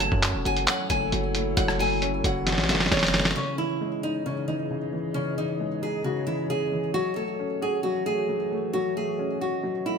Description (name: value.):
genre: hip hop, trap.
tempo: 134 BPM.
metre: 4/4.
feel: half-time.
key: C# minor.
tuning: A4 = 443 Hz.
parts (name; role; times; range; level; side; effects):
nylon-string guitar; melody; 0.0-10.0 s; C#4 to A5; -28 LUFS; equal; digital delay.
dark concert grand piano; accompaniment; 0.0-10.0 s; C#3 to F#4; -31 LUFS; equal; none.
warbly tape-like pad; sustained chords; 0.0-10.0 s; E3 to D#5; -34 LUFS; left 3 dB; chorus, built-in reverb, phaser.
distorted 808-style bass; bass; 0.0-3.3 s; E1 to F#2; -30 LUFS; equal; distortion.
lo-fi sampler-style drum kit; drums; 0.0-3.4 s; handclaps, hi-hat, kick drum, rim click, snare drum; -24 LUFS; equal; none.
room: moderate plate reverb, RT60 1.6 s, digital ambience.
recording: bright 1980s-style digital production.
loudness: -24 LUFS.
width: side -6 dB against mid.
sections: 0.0-3.4 A section; 3.4-10.0 B section.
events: drum fill 2.5-3.4.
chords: 0.0 F#m7; 3.4 C#madd9; 6.9 F#m7.